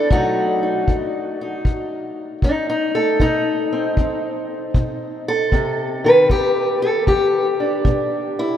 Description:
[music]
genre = acoustic country blues, solo or duo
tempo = 77 BPM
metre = 4/4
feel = swing 67% on 8ths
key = unclear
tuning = A4 = 440 Hz
[part]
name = fingerpicked steel-string acoustic guitar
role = melody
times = 0.0-8.6 s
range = E2 to B4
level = -17 LUFS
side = equal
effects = none
[part]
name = kick drum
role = drums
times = 0.1-8.1 s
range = none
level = -18 LUFS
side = equal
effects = none
[sound]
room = wet cathedral reverb, RT60 5.5 s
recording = in a vast, echoing space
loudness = -16 LUFS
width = side -10 dB against mid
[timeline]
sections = 0.0-8.6 A section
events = none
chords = 0.1 B7b9; 6.3 Em7

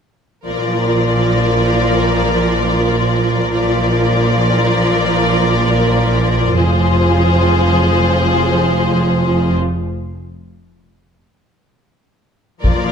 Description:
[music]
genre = cinematic, epic orchestral film score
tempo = free time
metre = none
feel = none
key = Bb mixolydian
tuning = A4 = 439 Hz
[part]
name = clear symphonic violin section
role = second line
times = 0.5-12.9 s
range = Ab4 to D5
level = -18 LUFS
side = left 4 dB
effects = none
[part]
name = rich symphonic viola section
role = accompaniment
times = 0.5-12.9 s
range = F3 to F4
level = -18 LUFS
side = equal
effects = none
[part]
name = clear symphonic cello section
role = bass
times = 0.5-12.9 s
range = F2 to Bb2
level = -19 LUFS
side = right 2 dB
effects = none
[part]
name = clear symphonic double bass section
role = bass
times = 0.5-12.9 s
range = F1 to Bb1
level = -19 LUFS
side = right 2 dB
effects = none
[part]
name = taiko ensemble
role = drums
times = 12.6-12.9 s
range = none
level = -14 LUFS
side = left 1 dB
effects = none
[sound]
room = light reverb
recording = close, detailed microphones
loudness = -12 LUFS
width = side -7 dB against mid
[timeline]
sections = 0.5-12.6 A section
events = break 9.6-12.6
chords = 0.5 Bb; 6.6 Fm

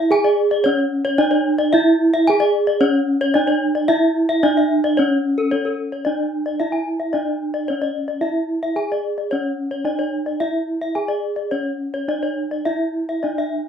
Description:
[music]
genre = gamelan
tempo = 111 BPM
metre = 4/4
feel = straight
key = C# pelog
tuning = A4 = 440 Hz
[part]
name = gamelan-type bronze metallophone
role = melody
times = 0.0-13.7 s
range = C#4 to G#4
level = -19 LUFS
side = right 2 dB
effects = none
[part]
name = gamelan-type bronze metallophone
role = arpeggios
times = 0.0-13.5 s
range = A4 to G#5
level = -22 LUFS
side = left 4 dB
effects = none
[sound]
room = wet studio reverb, RT60 0.5 s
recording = rough home demo mix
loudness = -17 LUFS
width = side -8 dB against mid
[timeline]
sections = 0.0-5.5 A section; 5.5-13.7 A section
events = none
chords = none

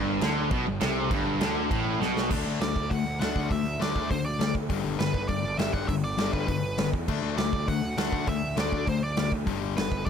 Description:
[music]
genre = punk rock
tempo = 201 BPM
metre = 4/4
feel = straight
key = unclear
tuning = A4 = 441 Hz
[part]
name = cranked stack guitar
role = riff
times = 0.0-2.3 s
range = G2 to D3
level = -30 LUFS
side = right 16 dB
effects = overdrive
[part]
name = distorted electric guitar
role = riff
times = 0.0-10.1 s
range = G2 to D4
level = -30 LUFS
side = left 10 dB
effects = overdrive
[part]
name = high-gain distorted guitar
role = riff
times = 0.0-2.3 s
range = G2 to D3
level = -33 LUFS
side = right 2 dB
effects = distortion
[part]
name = fuzz picked electric bass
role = bass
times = 0.0-10.1 s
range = G1 to E2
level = -32 LUFS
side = right 1 dB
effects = overdrive
[part]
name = big rock drum kit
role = drums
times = 0.2-10.1 s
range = crash cymbal, hi-hat, kick drum, snare drum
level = -30 LUFS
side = right 1 dB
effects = none
[part]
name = nasal lead guitar with a parked wah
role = melody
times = 2.6-10.1 s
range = B4 to F#5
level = -32 LUFS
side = right 2 dB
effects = overdrive
[sound]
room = little or no reverb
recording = none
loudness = -25 LUFS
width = side -7 dB against mid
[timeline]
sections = 0.0-2.3 A section; 2.3-10.1 B section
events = drum fill 2.0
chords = 0.0 G; 2.3 D; 4.7 G; 7.1 D; 9.5 G

